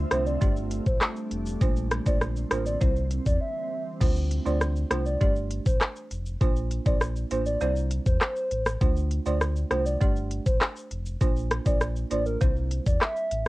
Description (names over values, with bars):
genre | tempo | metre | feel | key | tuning
dancehall | 100 BPM | 4/4 | straight | D minor | A4 = 437 Hz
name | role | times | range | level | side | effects
folk marimba with medium mallets | accompaniment | 0.0-13.5 s | G3 to D5 | -33 LUFS | right 6 dB | sidechain pumping, cassette tape
glassy FM pad | sustained chords | 0.0-4.0 s | A3 to E5 | -36 LUFS | right 1 dB | ensemble chorus, built-in reverb, sidechain pumping, cassette tape
sub bass with octave | bass | 0.0-13.5 s | F1 to E2 | -29 LUFS | equal | none
hollow clarinet-like synth lead | melody | 0.1-13.4 s | Bb4 to E5 | -31 LUFS | equal | chorus
pop drum kit | drums | 0.1-13.5 s | crash cymbal, handclaps, hi-hat, kick drum, rim click, shaker | -24 LUFS | equal | cassette tape
room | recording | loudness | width
little or no reverb | home recording on cassette | -24 LUFS | side -19 dB against mid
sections
0.0-4.0 A section; 4.0-13.5 A section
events
break 3.4-4.0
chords
0.4 Gsus2; 1.6 Bbadd9; 2.8 C; 4.0 Dm7; 5.2 Gsus2; 6.4 Bbadd9; 7.6 C; 8.8 Dm7; 10.0 Gsus2; 11.2 Bbadd9; 12.4 C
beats
0.41 1.01 | 1.61 2.21 2.81 3.41 | 4.01 4.61 5.21 5.81 | 6.41 7.01 7.61 8.21 | 8.81 9.41 10.01 10.61 | 11.21 11.81 12.41 13.01